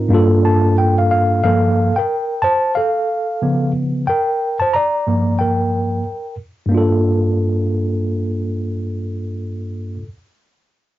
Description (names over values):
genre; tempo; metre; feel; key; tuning
hip hop; 91 BPM; 4/4; swing 61% on 16ths; G minor; A4 = 440 Hz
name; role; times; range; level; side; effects
tine electric piano; accompaniment; 0.0-10.1 s; G2 to Bb5; -15 LUFS; equal; overdrive, fast stereo tremolo
room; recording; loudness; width
moderate booth ambience, RT60 0.3 s; home recording on cassette, nothing above 7.6 kHz; -15 LUFS; side -14 dB against mid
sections
0.0-1.4 A section; 1.4-6.7 B section; 6.7-9.4 C section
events
tine electric piano fill 0.1-1.4; tine electric piano solo 1.4-6.7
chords
0.1 Gm9; 3.4 C#7; 4.1 C9sus4 (rootless); 6.7 Gm9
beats
0.12 0.78 | 1.44 2.10 2.76 3.42 | 4.08 4.74 5.40 6.06 | 6.72 7.38 8.04 8.70